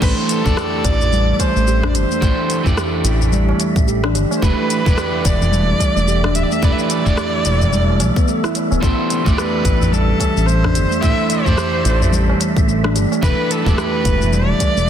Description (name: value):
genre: organic downtempo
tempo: 109 BPM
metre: 4/4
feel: swing 59% on 16ths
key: A minor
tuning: A4 = 440 Hz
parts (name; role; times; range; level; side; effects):
- clear kamancheh; melody; 0.0-14.9 s; A4 to E5; -22 LUFS; equal; tape echo
- electric guitar at the edge of break-up; accompaniment; 0.0-14.9 s; E3 to D5; -22 LUFS; right 2 dB; sidechain pumping, tape echo
- handpan; arpeggios; 0.0-14.9 s; G3 to G4; -21 LUFS; right 1 dB; tape echo
- smooth gliding synth bass; bass; 0.0-14.9 s; D1 to B1; -18 LUFS; equal; none
- electronic kick drum; drums; 0.0-14.7 s; none; -17 LUFS; equal; none
- organic electronic drum kit; drums; 0.0-14.9 s; crash cymbal, hi-hat, rim click, shaker; -26 LUFS; left 2 dB; soft clipping on snare
- wind-like tuned noise texture; texture; 1.2-14.9 s; E5; -30 LUFS; right 1 dB; built-in reverb
- tabla; percussion; 0.5-14.9 s; none; -25 LUFS; equal; none
room: light reverb, digital ambience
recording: dense, heavily limited modern master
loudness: -14 LUFS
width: side -9 dB against mid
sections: 0.0-14.9 A section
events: none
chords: 0.0 Am7; 4.4 Em7; 8.8 Am7; 13.2 Em7